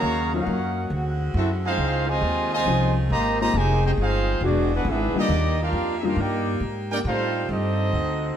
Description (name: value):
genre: jazz, big band swing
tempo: 137 BPM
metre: 4/4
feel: swing 67% on 8ths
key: Eb major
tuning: A4 = 440 Hz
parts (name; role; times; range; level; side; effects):
- clear trumpet section; melody; 0.0-8.4 s; Bb3 to Bb5; -26 LUFS; right 1 dB; none
- clear trombone section; second line; 0.0-8.4 s; C3 to G4; -28 LUFS; right 1 dB; none
- bright saxophone section; sustained chords; 0.0-8.4 s; D3 to Ab4; -34 LUFS; left 1 dB; none
- upright bass; bass; 0.0-8.4 s; E1 to A2; -25 LUFS; equal; none
- dark baby grand piano; accompaniment; 0.3-6.2 s; Eb3 to Ab4; -28 LUFS; left 4 dB; none
room: wet echo chamber reverb, RT60 1.8 s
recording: heard from further back in the room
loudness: -21 LUFS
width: side -9 dB against mid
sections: 0.0-8.4 A section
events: none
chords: 0.0 Ebm9; 0.9 D7#11; 1.8 Dbmaj9; 3.5 Fm11; 4.4 E9; 5.3 Ebmaj7; 7.1 Am7b5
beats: | 0.03 0.47 0.91 1.35 | 1.79 2.22 2.66 3.10 | 3.54 3.98 4.42 4.86 | 5.30 5.74 6.18 6.62 | 7.05 7.50 7.93